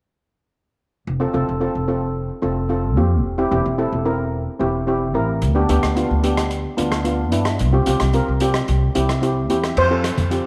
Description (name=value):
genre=calypso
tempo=110 BPM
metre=4/4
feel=straight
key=F major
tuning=A4 = 439 Hz
part: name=upright bass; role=bass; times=1.1-10.4 s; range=E1 to G2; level=-23 LUFS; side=equal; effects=none
part: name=steel pan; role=accompaniment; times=1.2-10.5 s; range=B3 to Bb4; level=-23 LUFS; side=equal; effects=none
part: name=swinging big-band drum kit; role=drums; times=5.4-10.4 s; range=crash cymbal, hi-hat, rim click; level=-30 LUFS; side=equal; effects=none
part: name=steel pan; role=melody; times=9.8-10.5 s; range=C5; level=-22 LUFS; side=equal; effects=slapback echo
part: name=congas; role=percussion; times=10.2-10.3 s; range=none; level=-29 LUFS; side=equal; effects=none
room=moderate echo chamber reverb, RT60 1.4 s, studio reverb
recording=none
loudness=-20 LUFS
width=mono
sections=1.1-9.8 A section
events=none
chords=1.1 F; 3.2 C/E; 5.4 G/D; 7.6 Csus4; 8.7 C; 9.8 F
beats=| 1.07 1.61 2.16 2.70 | 3.25 3.79 4.33 4.88 | 5.42 5.96 6.51 7.05 | 7.60 8.14 8.68 9.23 | 9.77 10.31